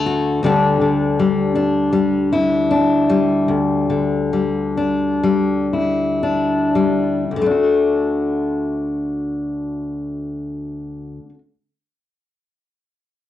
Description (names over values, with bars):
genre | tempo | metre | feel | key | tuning
folk, solo fingerstyle acoustic guitar | 52-80 BPM | 4/4 | rubato | D major | A4 = 436 Hz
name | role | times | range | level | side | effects
fingerpicked steel-string acoustic guitar | solo | 0.0-11.4 s | D2 to G4 | -16 LUFS | left 2 dB | none
room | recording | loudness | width
wet studio reverb, RT60 0.5 s | home recording on cassette | -16 LUFS | side -12 dB against mid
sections
0.4-7.3 A section; 7.3-11.7 B section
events
slowing down 0.4-7.3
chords
0.4 Dsus4; 7.3 D